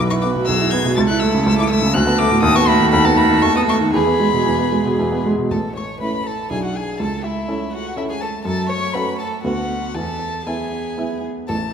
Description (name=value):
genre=quick classical-period movement for piano quartet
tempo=113-125 BPM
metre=3/4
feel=rubato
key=A major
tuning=A4 = 440 Hz
part: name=warm violin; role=melody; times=0.0-11.7 s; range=E5 to A6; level=-23 LUFS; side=left 6 dB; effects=none
part: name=rich cello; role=second line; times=0.0-11.7 s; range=E3 to G#4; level=-25 LUFS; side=right 8 dB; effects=none
part: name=warm violin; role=second line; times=0.0-11.6 s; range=E4 to C#5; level=-25 LUFS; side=right 1 dB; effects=none
part: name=warm baby grand piano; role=accompaniment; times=0.0-11.7 s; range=A1 to E5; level=-18 LUFS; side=right 1 dB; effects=none
room=wet recital hall reverb, RT60 1.5 s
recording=none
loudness=-16 LUFS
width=side -7 dB against mid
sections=0.0-5.5 A section; 5.5-11.7 B section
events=none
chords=0.0 E/B; 1.0 A/C#; 1.9 Bm7/D; 2.4 B7/D#; 3.9 E; 5.5 A; 6.5 E7/B; 7.0 A/C#; 8.5 F#m; 9.4 Bm/D; 10.0 E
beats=0.47 | 0.97 1.45 1.94 | 2.42 2.92 3.42 | 3.94 4.47 4.99 | 5.51 6.01 6.51 | 7.00 7.49 7.97 | 8.45 8.95 9.45 | 9.96 10.47 10.98 | 11.49